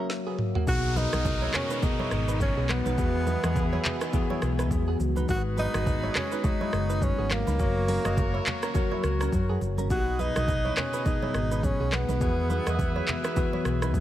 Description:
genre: afrobeats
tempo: 104 BPM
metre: 4/4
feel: swing 58% on 16ths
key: B major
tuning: A4 = 441 Hz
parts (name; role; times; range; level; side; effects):
- bell-like tine electric piano; accompaniment; 0.0-14.0 s; B2 to E5; -33 LUFS; left 5 dB; lush chorus
- glassy FM pad; sustained chords; 0.0-14.0 s; C#3 to F#4; -38 LUFS; right 1 dB; ensemble chorus, built-in reverb
- direct-recorded clean electric guitar; riff; 0.0-13.9 s; A#3 to D#5; -37 LUFS; right 6 dB; lush chorus, tape echo
- afro-pop drum kit; drums; 0.1-14.0 s; handclaps, hi-hat, kick drum, rim click, shaker, snare drum, toms; -30 LUFS; equal; overdrive
- breathy tenor saxophone; melody; 0.7-13.7 s; A#3 to F#4; -32 LUFS; equal; tape echo
- warm horn section; second line; 0.7-14.0 s; B3 to E5; -37 LUFS; right 1 dB; none
- hollow-body short-scale fingered electric bass; bass; 0.7-14.0 s; F#1 to F#2; -28 LUFS; equal; none
- downlifter; sound effects; 0.7-5.3 s; none; -39 LUFS; equal; none
- congas; percussion; 1.0-14.0 s; none; -36 LUFS; right 2 dB; none
room: little or no reverb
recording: none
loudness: -24 LUFS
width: side -12 dB against mid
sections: 0.7-14.0 A section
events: break 0.0-0.7; drum fill 0.1-0.7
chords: 0.0 F#; 0.7 B6; 3.0 Eadd9; 5.3 G#m7; 9.9 B6; 12.2 Eadd9

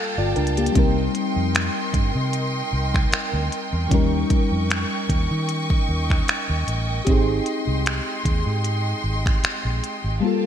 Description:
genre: contemporary R&B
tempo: 76 BPM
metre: 4/4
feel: swing 54% on 16ths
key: unclear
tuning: A4 = 444 Hz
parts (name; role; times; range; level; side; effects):
- mellow FM electric piano; accompaniment; 0.0-10.5 s; F3 to F5; -25 LUFS; left 3 dB; chorus
- warm studio string section; sustained chords; 0.0-10.5 s; Ab3 to Db6; -28 LUFS; right 2 dB; none
- vintage muted fingered electric bass; bass; 0.2-10.2 s; G1 to Eb3; -24 LUFS; equal; none
- glitchy drum kit; drums; 0.4-10.0 s; finger snaps, hi-hat, kick drum; -23 LUFS; equal; gated reverb
room: moderate lush hall reverb, RT60 2.9 s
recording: bright 1980s-style digital production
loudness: -19 LUFS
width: side -9 dB against mid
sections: 0.0-10.5 A section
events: break 0.0-0.8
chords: 0.0 Gm9; 0.8 Cm7; 3.9 Eb7; 7.1 Abmaj7

